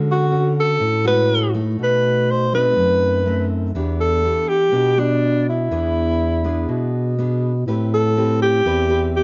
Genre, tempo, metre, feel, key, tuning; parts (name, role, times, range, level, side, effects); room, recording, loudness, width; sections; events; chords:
bossa nova; 122 BPM; 4/4; straight; A4 = 440 Hz
nylon-string guitar; accompaniment; 0.0-9.2 s; A2 to B4; -27 LUFS; equal; plate reverb
breathy bass clarinet; bass; 0.0-9.2 s; E2 to D3; -23 LUFS; equal
breathy alto saxophone; melody; 0.1-9.2 s; D4 to C5; -20 LUFS; equal; plate reverb
wet small room reverb, RT60 0.5 s; home recording on cassette, nothing above 7.6 kHz; -18 LUFS; mono
0.0-9.2 A section
0.0 Dmaj7#11; 1.8 B7b9; 3.7 Em7; 5.7 E7; 7.7 Am9